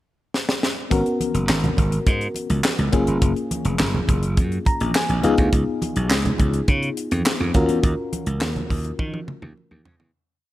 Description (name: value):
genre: early-eighties boogie funk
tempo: 104 BPM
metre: 4/4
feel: straight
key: G# dorian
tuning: A4 = 439 Hz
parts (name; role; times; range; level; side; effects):
- tight funk drum kit; drums; 0.3-10.1 s; handclaps, hi-hat, kick drum, snare drum, toms; -22 LUFS; equal; gated reverb
- FM electric piano with auto-pan; accompaniment; 0.9-9.8 s; A#3 to A#5; -24 LUFS; left 3 dB; none
- slap bass; bass; 0.9-10.1 s; E#1 to D#3; -22 LUFS; equal; none
- congas; percussion; 1.2-10.0 s; none; -31 LUFS; right 2 dB; none
room: light reverb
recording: none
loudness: -19 LUFS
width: side -15 dB against mid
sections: 0.0-0.9 pickup bar; 0.9-10.1 verse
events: drum fill 0.3-0.9, 9.0-10.1; FM electric piano fill 4.4-5.5; fade-out 7.8-10.1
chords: 0.0 N.C.; 0.9 G#m11; 2.9 F#maj9; 5.2 C#7; 7.5 D#m7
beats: 0.34 | 0.91 1.49 2.07 2.64 | 3.22 3.80 4.37 4.95 | 5.53 6.11 6.68 7.26 | 7.84 8.41 8.99 9.57